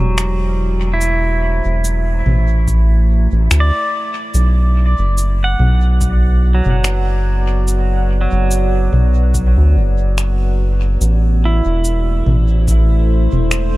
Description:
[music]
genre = ambient dub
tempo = 72 BPM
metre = 4/4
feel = swing 55% on 16ths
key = A dorian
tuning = A4 = 441 Hz
[part]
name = deep dark ambient pad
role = sustained chords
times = 0.0-13.8 s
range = A3 to D5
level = -27 LUFS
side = left 1 dB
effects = chorus, built-in reverb
[part]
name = pedal steel guitar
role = arpeggios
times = 0.0-13.8 s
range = F#3 to F#5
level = -22 LUFS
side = right 2 dB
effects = dub echo
[part]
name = round analog bass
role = bass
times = 0.0-13.8 s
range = E1 to D2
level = -13 LUFS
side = equal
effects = none
[part]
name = organic electronic drum kit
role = drums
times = 0.2-13.7 s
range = cabasa, finger snaps, toms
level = -22 LUFS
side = left 1 dB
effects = dub echo
[part]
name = electronic kick drum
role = drums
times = 2.7-12.9 s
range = none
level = -19 LUFS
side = equal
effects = none
[sound]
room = digital ambience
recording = none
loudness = -12 LUFS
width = side -18 dB against mid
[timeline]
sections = 0.0-13.8 A section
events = fade-in on ambient pad 0.0-13.8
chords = 0.0 Am; 4.3 Bm; 11.0 Am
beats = 0.18 | 1.01 1.84 2.68 3.51 | 4.34 5.18 6.01 6.84 | 7.68 8.51 9.35 10.18 | 11.01 11.85 12.68 13.51

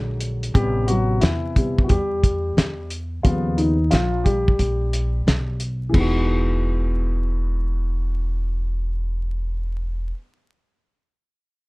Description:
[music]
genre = hip hop, jazz-hop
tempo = 89 BPM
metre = 4/4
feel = swing 66% on 16ths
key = unclear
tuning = A4 = 444 Hz
[part]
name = dark baby grand piano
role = accompaniment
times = 0.0-10.1 s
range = C3 to G4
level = -24 LUFS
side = left 1 dB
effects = none
[part]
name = upright bass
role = bass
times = 0.0-10.1 s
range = E1 to E2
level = -23 LUFS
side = equal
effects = none
[part]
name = cloth-damped thuddy drum kit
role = drums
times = 0.2-6.1 s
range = crash cymbal, hi-hat, kick drum, snare drum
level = -20 LUFS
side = equal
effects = none
[sound]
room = light reverb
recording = dark, warm production, vinyl crackle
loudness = -19 LUFS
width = side -24 dB against mid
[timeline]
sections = 0.0-5.9 A section; 5.9-8.6 B section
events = grand piano solo 0.0-5.9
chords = 0.0 E7 (rootless); 0.5 Am7; 3.2 D#7b13; 5.9 Emaj9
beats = | 0.55 1.22 1.90 2.57 | 3.24 3.92 4.59 5.27 | 5.94 6.62 7.29 7.96

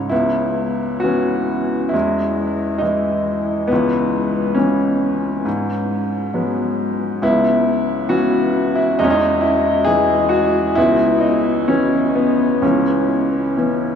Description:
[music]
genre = classical, lyrical solo piano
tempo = 68 BPM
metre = 4/4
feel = uneven beats, rubato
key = C# minor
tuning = A4 = 438 Hz
[part]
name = clear baby grand piano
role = solo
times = 0.0-14.0 s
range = C#2 to C#5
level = -15 LUFS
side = left 1 dB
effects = none
[sound]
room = wet huge ambient reverb, RT60 7.4 s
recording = in a vast, echoing space, small room ambience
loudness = -15 LUFS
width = side -7 dB against mid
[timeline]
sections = 0.1-14.0 A section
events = none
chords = 0.1 C#m7; 1.9 Emaj7; 3.7 C#m7; 5.5 G#m7; 7.2 C#m7; 9.0 Emaj7; 10.8 C#m7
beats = | 0.11 1.04 1.95 2.83 | 3.71 4.58 5.46 6.35 | 7.22 8.10 8.99 9.88 | 10.77 11.69 12.62 13.59

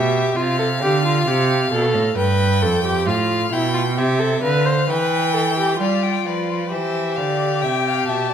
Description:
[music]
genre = classical, baroque-style fugue for string quartet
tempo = 66 BPM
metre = 4/4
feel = straight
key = unclear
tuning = A4 = 438 Hz
[part]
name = clear violin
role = second line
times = 0.0-8.3 s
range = B4 to G5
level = -24 LUFS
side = left 5 dB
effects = none
[part]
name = rich viola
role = accompaniment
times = 0.0-8.3 s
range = E4 to C5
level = -21 LUFS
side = equal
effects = none
[part]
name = rich cello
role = bass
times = 0.0-8.3 s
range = F2 to G3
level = -21 LUFS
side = right 3 dB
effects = none
[part]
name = rich violin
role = melody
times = 5.8-8.3 s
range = D5 to A5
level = -25 LUFS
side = left 12 dB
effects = none
[sound]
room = wet recital hall reverb, RT60 1.4 s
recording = minimal, uncompressed stereo recording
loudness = -17 LUFS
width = side -8 dB against mid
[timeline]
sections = 0.0-5.8 A section; 5.8-8.3 B section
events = none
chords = 0.4 Dm7/C; 2.2 G7; 4.0 C; 5.8 G7; 7.6 C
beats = 0.36 1.26 | 2.16 3.07 3.97 4.88 | 5.80 6.72 7.62

